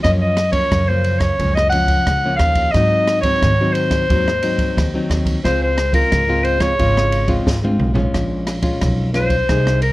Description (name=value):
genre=samba and choro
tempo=89 BPM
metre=4/4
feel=straight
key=Db major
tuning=A4 = 439 Hz
part: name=clear clarinet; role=melody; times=0.0-9.9 s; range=Bb4 to Gb5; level=-18 LUFS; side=equal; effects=none
part: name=nylon-string guitar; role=accompaniment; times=0.0-9.9 s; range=F2 to Ab4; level=-22 LUFS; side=left 1 dB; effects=none
part: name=upright bass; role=bass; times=0.0-9.9 s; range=Ab1 to Ab2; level=-20 LUFS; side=equal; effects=none
part: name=open jazz drum kit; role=drums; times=0.0-9.9 s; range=kick drum, ride cymbal, rim click, snare drum, toms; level=-21 LUFS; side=equal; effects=none
room=light reverb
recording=worn, warbling old tape, cassette tape, warbly pitch drift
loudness=-14 LUFS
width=side -18 dB against mid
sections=0.0-8.1 A section; 8.1-9.9 B section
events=drum fill 7.5-8.1; clarinet solo 8.1-9.9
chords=0.0 Gbmaj7; 2.7 Ab7; 5.4 Dbmaj7; 8.1 Bbm7